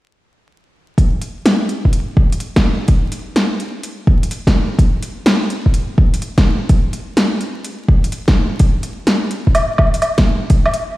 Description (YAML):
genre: future garage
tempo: 126 BPM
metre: 4/4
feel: swing 67% on 16ths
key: none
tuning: none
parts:
  - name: deep house drum kit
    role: drums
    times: 1.0-10.9 s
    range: hi-hat, snare drum, woodblock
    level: -17 LUFS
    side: equal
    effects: overdrive
  - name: electronic kick drum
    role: drums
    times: 1.0-10.6 s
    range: none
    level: -13 LUFS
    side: equal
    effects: overdrive
room: light reverb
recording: played on a big sound system in a bare room, stone room reverb, vinyl crackle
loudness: -13 LUFS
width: side -17 dB against mid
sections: 1.0-8.6 A section; 8.6-11.0 B section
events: none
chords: none